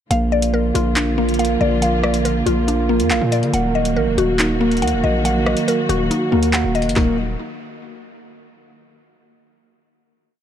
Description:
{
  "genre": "hip hop, drill",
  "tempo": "140 BPM",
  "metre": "4/4",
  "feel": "half-time",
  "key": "Eb harmonic minor",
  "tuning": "A4 = 438 Hz",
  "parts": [
    { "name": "mellow tine electric piano", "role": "accompaniment", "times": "0.1-7.2 s", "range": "Bb3 to Bb4", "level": "-21 LUFS", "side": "moving between right 1 dB and right 8 dB", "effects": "auto-pan" },
    { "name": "warm studio string section", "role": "sustained chords", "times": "0.1-7.2 s", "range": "D3 to Gb4", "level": "-25 LUFS", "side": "equal", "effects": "none" },
    { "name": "mallet-like synth pluck", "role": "arpeggios", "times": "0.1-7.2 s", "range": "Bb3 to Gb5", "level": "-21 LUFS", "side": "left 4 dB", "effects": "chorus, digital delay" },
    { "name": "distorted 808-style bass", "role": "bass", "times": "0.1-7.4 s", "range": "Eb1 to D3", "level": "-21 LUFS", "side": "equal", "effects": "distortion" },
    { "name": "drill drum kit", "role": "drums", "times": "0.1-7.1 s", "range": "handclaps, hi-hat, kick drum, rim click, snare drum", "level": "-24 LUFS", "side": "equal", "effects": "none" }
  ],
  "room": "light reverb",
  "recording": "dark, warm production",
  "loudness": "-15 LUFS",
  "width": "side -9 dB against mid",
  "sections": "0.1-7.0 hook; 7.0-8.7 final chord",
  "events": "none",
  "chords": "0.1 Bb; 3.5 Ebm"
}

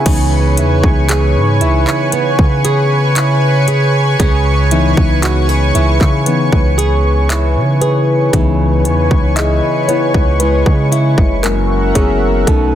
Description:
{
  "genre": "contemporary R&B",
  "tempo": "58 BPM",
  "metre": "4/4",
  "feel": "straight",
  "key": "C# minor",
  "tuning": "A4 = 440 Hz",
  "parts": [
    { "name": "muted felt-like synth keys", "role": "accompaniment", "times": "0.0-12.8 s", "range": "E3 to G#5", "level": "-18 LUFS", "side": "left 4 dB", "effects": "chorus" },
    { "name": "lush unison pad", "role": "sustained chords", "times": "0.0-12.8 s", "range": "A#4 to D#6", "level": "-18 LUFS", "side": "left 1 dB", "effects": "chorus" },
    { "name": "flamenco guitar", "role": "arpeggios", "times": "0.0-12.8 s", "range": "F#2 to G#4", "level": "-18 LUFS", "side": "right 5 dB", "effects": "none" },
    { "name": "long sustained 808-style bass", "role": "bass", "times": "0.1-12.8 s", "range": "F#1 to C#3", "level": "-14 LUFS", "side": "equal", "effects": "none" },
    { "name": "trap drum kit", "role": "drums", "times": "0.1-12.7 s", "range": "crash cymbal, handclaps, hi-hat, kick drum", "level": "-15 LUFS", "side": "equal", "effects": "none" }
  ],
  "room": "digital ambience",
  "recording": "dense, heavily limited modern master",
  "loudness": "-10 LUFS",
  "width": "side -11 dB against mid",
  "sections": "0.1-8.3 A section; 8.3-12.8 B section",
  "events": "synth keys solo 8.3-12.8",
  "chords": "0.1 C#m7; 11.4 F#7"
}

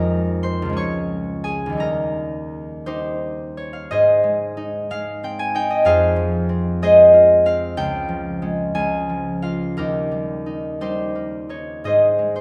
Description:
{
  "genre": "classical, solo harp piece",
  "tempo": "56-64 BPM (dotted quarters)",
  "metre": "6/8",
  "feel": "rubato",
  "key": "Ab major",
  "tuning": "A4 = 439 Hz",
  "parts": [
    { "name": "concert harp", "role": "solo", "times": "0.0-12.4 s", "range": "Db2 to Eb6", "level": "-20 LUFS", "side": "equal", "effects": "none" }
  ],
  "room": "wet recital hall reverb, RT60 1.9 s",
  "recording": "none",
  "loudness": "-19 LUFS",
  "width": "mono",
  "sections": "0.0-3.9 A section; 3.9-12.4 B section",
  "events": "none",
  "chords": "0.0 Fm7; 0.8 Db; 1.8 Eb; 3.9 Ab; 5.9 Fm; 7.8 Db; 8.8 Bbm/Db; 9.8 Eb; 11.8 Ab"
}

